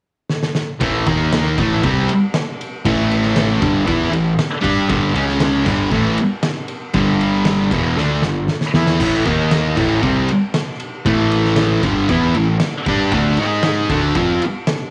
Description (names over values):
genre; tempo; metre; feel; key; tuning
garage rock duo or trio; 117 BPM; 4/4; straight; unclear; A4 = 440 Hz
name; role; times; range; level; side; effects
oversized low-tuned drum kit; drums; 0.3-14.8 s; crash cymbal, kick drum, ride cymbal, snare drum, splash cymbal; -24 LUFS; equal; none
thick fuzz guitar; riff; 0.8-14.4 s; E2 to G#4; -19 LUFS; equal; distortion
fuzz picked electric bass; bass; 0.8-14.4 s; E1 to G#2; -24 LUFS; equal; overdrive
room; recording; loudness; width
light reverb, small room ambience; none; -17 LUFS; mono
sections
0.8-14.9 A section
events
drum fill 0.3-0.8, 8.0-9.0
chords
0.0 N.C.; 0.8 A5; 1.1 D#5; 1.6 A5; 4.9 G5; 5.2 C#5; 5.7 G5; 9.0 A5; 9.3 D#5; 9.8 A5; 13.1 D5; 13.4 G#5; 13.9 D5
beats
0.30 | 0.81 1.33 1.84 2.35 | 2.86 3.37 3.88 4.39 | 4.91 5.42 5.93 6.44 | 6.95 7.47 7.98 8.49 | 9.01 9.52 10.04 10.55 | 11.06 11.58 12.10 12.61 | 13.13 13.64 14.16 14.68